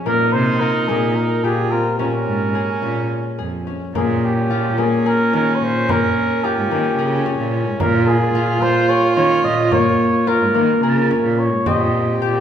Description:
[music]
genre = contemporary instrumental, chamber music in an uneven meter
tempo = 217 BPM (eighths)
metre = 7/8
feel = straight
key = Bb dorian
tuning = A4 = 438 Hz
[part]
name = warm viola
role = second line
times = 0.0-12.4 s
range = Db4 to G4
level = -23 LUFS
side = right 3 dB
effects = none
[part]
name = concert harp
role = arpeggios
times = 0.0-12.4 s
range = Bb3 to Ab4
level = -20 LUFS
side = left 4 dB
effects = none
[part]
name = warm flugelhorn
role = melody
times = 0.1-12.2 s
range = G4 to Eb5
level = -20 LUFS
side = right 2 dB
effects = none
[part]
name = warm cello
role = bass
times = 0.1-12.4 s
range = F2 to Eb3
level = -22 LUFS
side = right 1 dB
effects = none
[part]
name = frame drum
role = percussion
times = 4.0-12.1 s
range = none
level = -28 LUFS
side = right 1 dB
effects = none
[sound]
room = wet recital hall reverb, RT60 1.6 s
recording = recorded in a church or concert hall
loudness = -15 LUFS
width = side -9 dB against mid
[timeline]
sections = 0.0-4.0 A section; 4.0-12.4 B section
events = none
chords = 0.1 Ebadd9/Bb; 2.0 Bbm7; 11.7 Cm/Bb

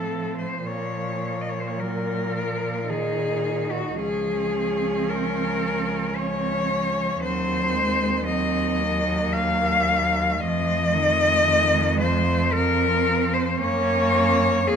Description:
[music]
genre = classical, lyrical piece for cello ensemble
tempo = 56 BPM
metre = 3/4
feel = rubato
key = Bb minor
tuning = A4 = 437 Hz
[part]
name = rich cello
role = melody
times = 0.0-14.8 s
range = Gb4 to F5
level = -23 LUFS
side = left 3 dB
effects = none
[part]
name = rich cello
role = second line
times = 0.0-14.8 s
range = A3 to Eb4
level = -30 LUFS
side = right 10 dB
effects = none
[part]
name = rich cello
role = accompaniment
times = 0.0-14.8 s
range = Eb3 to Bb3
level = -28 LUFS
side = equal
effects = none
[part]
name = rich cello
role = bass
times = 0.0-14.8 s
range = Db2 to Bb2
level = -28 LUFS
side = right 2 dB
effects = none
[sound]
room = moderate recital hall reverb, RT60 1.5 s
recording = minimal, uncompressed stereo recording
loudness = -20 LUFS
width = side -7 dB against mid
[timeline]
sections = 0.0-14.8 A section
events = none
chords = 0.0 F/A; 0.7 Bb5; 4.0 Bbm/Db; 7.2 Cdim/Eb; 10.4 F7; 13.6 Gb

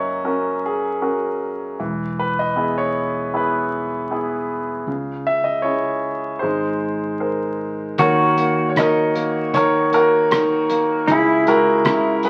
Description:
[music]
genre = acoustic folk-pop ballad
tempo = 78 BPM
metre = 4/4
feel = straight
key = unclear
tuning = A4 = 440 Hz
[part]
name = bright concert grand piano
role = melody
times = 0.0-12.3 s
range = C#3 to F#5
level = -21 LUFS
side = equal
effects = none
[part]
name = mellow fretless electric bass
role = bass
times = 0.0-12.3 s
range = E1 to D#2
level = -33 LUFS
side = equal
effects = none
[part]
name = pedal steel guitar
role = second line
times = 8.0-12.3 s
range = E4 to F#4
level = -23 LUFS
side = equal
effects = none
[part]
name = cloth-damped thuddy drum kit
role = drums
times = 8.0-12.3 s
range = hi-hat, kick drum, rim click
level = -26 LUFS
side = equal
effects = none
[sound]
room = moderate studio reverb, RT60 0.7 s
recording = very old 78 rpm record, vinyl crackle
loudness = -20 LUFS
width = mono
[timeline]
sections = 0.0-8.0 A section; 8.0-12.3 B section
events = none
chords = 0.0 F#; 1.8 E; 4.9 C#m; 6.4 G#add9; 8.0 D#m7; 11.1 C#m

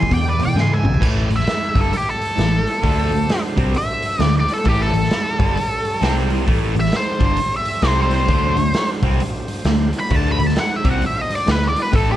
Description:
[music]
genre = blues rock power trio and southern rock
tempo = 132 BPM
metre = 4/4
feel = swing 62% on 8ths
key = unclear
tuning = A4 = 439 Hz
[part]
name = octave-fuzz lead guitar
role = melody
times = 0.0-12.2 s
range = G4 to C6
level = -22 LUFS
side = equal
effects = wah, distortion
[part]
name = nasal lead guitar with a parked wah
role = second line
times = 0.0-1.0 s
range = B4 to G#5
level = -29 LUFS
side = right 5 dB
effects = overdrive
[part]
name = percussive tonewheel organ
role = sustained chords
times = 0.0-12.2 s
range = F#3 to D5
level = -32 LUFS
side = right 3 dB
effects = slow rotary speaker, overdrive
[part]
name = distorted electric guitar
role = riff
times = 0.0-12.2 s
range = E2 to D4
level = -21 LUFS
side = left 1 dB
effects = distortion
[part]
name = vintage muted picked electric bass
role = bass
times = 0.0-12.2 s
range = G1 to E3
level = -20 LUFS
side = equal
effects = none
[part]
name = raw garage drum kit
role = drums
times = 0.0-12.1 s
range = crash cymbal, hi-hat, kick drum, snare drum, toms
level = -21 LUFS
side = equal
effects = none
[sound]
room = light reverb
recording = none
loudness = -16 LUFS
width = side -13 dB against mid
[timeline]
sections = 0.0-1.0 A section; 1.0-12.2 B section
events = drum fill 0.6-1.0; lead electric guitar solo 1.0-12.2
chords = 0.0 E7; 1.0 A7; 2.8 D7; 4.7 A7; 6.0 C5; 6.5 A7; 7.8 C5; 8.3 D7

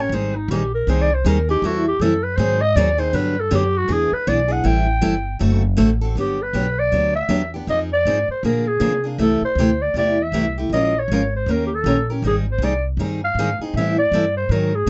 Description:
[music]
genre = acoustic string swing (jazz manouche)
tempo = 158 BPM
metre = 4/4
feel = swing 62% on 8ths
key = unclear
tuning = A4 = 440 Hz
[part]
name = growling clarinet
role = melody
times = 0.0-14.9 s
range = Eb4 to G5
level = -23 LUFS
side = equal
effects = none
[part]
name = picked steel-string acoustic guitar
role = accompaniment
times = 0.0-14.9 s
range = C3 to Bb4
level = -23 LUFS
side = equal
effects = none
[part]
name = upright bass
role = bass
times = 0.0-14.9 s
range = F#1 to C3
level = -25 LUFS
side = equal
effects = none
[sound]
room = light reverb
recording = nothing above 8.0 kHz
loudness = -19 LUFS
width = mono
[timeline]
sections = 0.0-6.2 A section; 6.2-14.9 B section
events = clarinet solo 0.0-6.2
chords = 0.1 Abmaj7; 1.6 Am7; 2.4 Ab7; 3.1 Gmaj7; 3.9 E7; 4.7 Am7; 5.4 D7; 6.2 Gmaj7; 7.7 Fm7; 8.4 Bb9; 9.2 C6; 10.7 Bbm7; 11.5 Eb7; 12.2 Abmaj7; 13.7 Am7

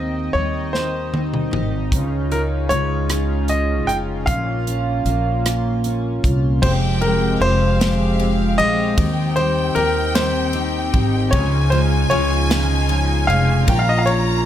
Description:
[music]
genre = six-eight pop ballad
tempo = 51 BPM (dotted quarters)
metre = 6/8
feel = straight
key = F minor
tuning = A4 = 439 Hz
[part]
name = bright grand piano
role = melody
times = 0.0-14.5 s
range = Bb4 to G5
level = -22 LUFS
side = equal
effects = none
[part]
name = picked steel-string acoustic guitar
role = accompaniment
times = 0.0-14.5 s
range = Bb2 to G4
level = -24 LUFS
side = left 1 dB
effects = double-tracked left and right
[part]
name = chorused pulse-width pad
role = sustained chords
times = 0.0-14.5 s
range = Db3 to G5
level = -27 LUFS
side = equal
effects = none
[part]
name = upright bass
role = bass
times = 0.0-14.4 s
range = F1 to Eb2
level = -21 LUFS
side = equal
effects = none
[part]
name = modern studio drum kit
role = drums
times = 0.7-14.3 s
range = crash cymbal, hi-hat, kick drum, ride cymbal, rim click, snare drum, toms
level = -23 LUFS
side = equal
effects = none
[part]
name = warm studio violin section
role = second line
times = 6.6-14.5 s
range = F5 to Bb5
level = -26 LUFS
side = equal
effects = none
[part]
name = direct-recorded clean electric guitar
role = arpeggios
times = 6.6-14.5 s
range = Bb2 to G4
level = -29 LUFS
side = left 8 dB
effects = spring reverb, tape echo
[sound]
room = light reverb, studio reverb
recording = none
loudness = -16 LUFS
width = side -11 dB against mid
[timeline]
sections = 0.0-6.6 A section; 6.6-14.5 B section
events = drum fill 0.7-1.9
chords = 0.0 Cm/Eb; 1.9 Dbadd9; 4.3 Bbm; 6.6 Fmadd9; 9.0 Cm/Eb; 11.3 Dbadd9; 13.7 Bbm

